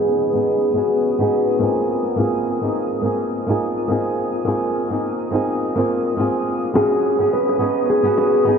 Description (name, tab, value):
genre	sunset chillout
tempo	105 BPM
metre	4/4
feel	swing 58% on 16ths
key	unclear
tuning	A4 = 440 Hz
part	mellow electric guitar	melody	0.0-1.9, 6.8-8.6 s	Ab4 to Cb5	-19 LUFS	equal	tape echo
part	flamenco guitar	accompaniment	0.0-8.6 s	Bb3 to Ab4	-19 LUFS	equal	auto-pan, tape echo
part	twinkling granular texture	texture	0.0-8.6 s	Eb6	-34 LUFS	left 2 dB	built-in reverb
part	shaker	drums	0.2-8.6 s	none	-42 LUFS	left 1 dB	none
part	bongos	percussion	6.8-8.3 s	none	-27 LUFS	equal	none
room	wet cathedral reverb, RT60 6.1 s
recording	dreamy mix soaked in reverb, low-pass filter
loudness	-17 LUFS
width	side -6 dB against mid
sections	0.0-8.6 A section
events	filter sweep 0.0-8.6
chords	0.0 Db9sus4; 1.9 Bb9sus4; 6.7 Db9sus4